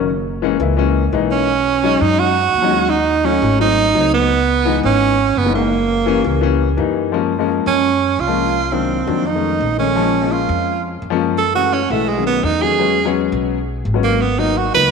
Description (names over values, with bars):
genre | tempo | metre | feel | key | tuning
Afro-Cuban jazz | 170 BPM | 4/4 | straight | F# major from 7.1 s | A4 = 440 Hz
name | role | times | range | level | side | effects
warm baby grand piano | accompaniment | 0.0-14.9 s | Eb3 to E4 | -19 LUFS | left 10 dB | none
upright bass | bass | 0.0-14.9 s | F#1 to F#2 | -22 LUFS | equal | none
warm tenor saxophone | melody | 1.3-14.9 s | G#3 to B4 | -16 LUFS | right 8 dB | slapback echo
room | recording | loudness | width
wet echo chamber reverb, RT60 2.7 s | 1960s-style stereo with parts hard left and right | -14 LUFS | side -5 dB against mid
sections
0.0-7.1 A section; 7.1-14.9 B section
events
tenor saxophone solo 7.1-14.9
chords
0.1 F#7; 1.5 B69; 2.9 D#m7b5; 3.6 G#7b9; 4.3 C#m9; 5.7 F#7b9; 7.1 F#maj9; 8.6 Cm7b5; 9.3 F7alt; 10.0 A#m7; 11.4 F#m9; 12.1 B9; 12.8 E69; 14.2 G#m9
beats
| 0.07 0.43 0.78 1.13 | 1.49 1.84 2.19 2.54 | 2.90 3.25 3.60 3.96 | 4.31 4.66 5.01 5.37 | 5.72 6.07 6.43 6.78 | 7.13 7.49 7.84 8.20 | 8.55 8.90 9.26 9.61 | 9.97 10.32 10.67 11.03 | 11.38 11.74 12.09 12.44 | 12.80 13.15 13.51 13.86 | 14.21 14.57